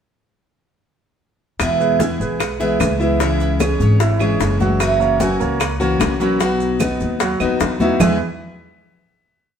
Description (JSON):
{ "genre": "latin, Cuban son and guajira", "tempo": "150 BPM", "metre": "4/4", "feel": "straight", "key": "E major", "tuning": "A4 = 444 Hz", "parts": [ { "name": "Cuban tres", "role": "melody", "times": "1.6-8.2 s", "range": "G#4 to G#5", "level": "-23 LUFS", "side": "right 9 dB", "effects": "none" }, { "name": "picked plugged-in steel-string acoustic guitar", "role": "accompaniment", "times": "1.6-8.2 s", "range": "E2 to F#4", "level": "-21 LUFS", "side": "left 4 dB", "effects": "none" }, { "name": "upright bass", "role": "bass", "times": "1.6-8.2 s", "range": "F#1 to E2", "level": "-21 LUFS", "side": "left 1 dB", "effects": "none" }, { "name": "bongos", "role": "percussion", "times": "1.6-8.1 s", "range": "none", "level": "-24 LUFS", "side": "left 4 dB", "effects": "none" }, { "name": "claves", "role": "percussion", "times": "1.6-8.1 s", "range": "none", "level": "-30 LUFS", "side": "right 3 dB", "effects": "none" }, { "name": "congas", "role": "percussion", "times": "1.6-8.1 s", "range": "none", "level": "-22 LUFS", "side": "equal", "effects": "none" }, { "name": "maracas", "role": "percussion", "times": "1.6-8.1 s", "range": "none", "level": "-35 LUFS", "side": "right 4 dB", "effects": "none" }, { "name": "clear concert grand piano", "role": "arpeggios", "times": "1.8-8.2 s", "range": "E3 to F#5", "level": "-22 LUFS", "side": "right 4 dB", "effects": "none" } ], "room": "moderate stone room reverb, RT60 1.1 s", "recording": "band playing live in one room", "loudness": "-15 LUFS", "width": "side -8 dB against mid", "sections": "1.6-8.0 verse; 8.0-9.6 final chord", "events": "none", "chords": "1.6 E; 3.2 C#m; 4.8 F#7; 6.4 B; 8.0 E" }